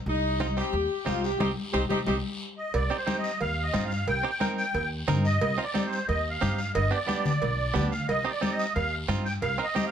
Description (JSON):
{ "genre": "latin, cumbia", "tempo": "180 BPM", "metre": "4/4", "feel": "straight", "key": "C minor", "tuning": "A4 = 440 Hz", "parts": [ { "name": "mellow saxophone section", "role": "melody", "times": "0.1-2.1 s", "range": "C4 to G4", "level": "-29 LUFS", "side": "left 2 dB", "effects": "plate reverb" }, { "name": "upright bass", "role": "bass", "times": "0.1-9.6 s", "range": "G1 to G2", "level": "-30 LUFS", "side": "equal", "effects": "none" }, { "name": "congas", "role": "percussion", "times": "0.1-9.9 s", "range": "none", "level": "-32 LUFS", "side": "left 3 dB", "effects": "none" }, { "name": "guiro", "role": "percussion", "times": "0.1-9.9 s", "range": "none", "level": "-42 LUFS", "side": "left 2 dB", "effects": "none" }, { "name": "direct-recorded clean electric guitar", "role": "accompaniment", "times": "0.4-9.9 s", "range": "B3 to Bb4", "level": "-32 LUFS", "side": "right 6 dB", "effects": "none" }, { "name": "musette accordion", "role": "second line", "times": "2.6-9.9 s", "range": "C5 to G5", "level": "-29 LUFS", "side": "right 1 dB", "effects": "none" }, { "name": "cowbell and timbales", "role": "percussion", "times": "2.7-9.6 s", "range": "none", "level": "-33 LUFS", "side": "right 6 dB", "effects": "none" } ], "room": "moderate studio reverb, RT60 0.9 s", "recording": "none", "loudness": "-25 LUFS", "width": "side -8 dB against mid", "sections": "0.0-2.7 A section; 2.7-9.9 B section", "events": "band accent 1.4-2.7; drum fill 2.2-2.7; accordion solo 2.7-9.9", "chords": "0.0 Cm; 6.8 G; 8.1 Cm" }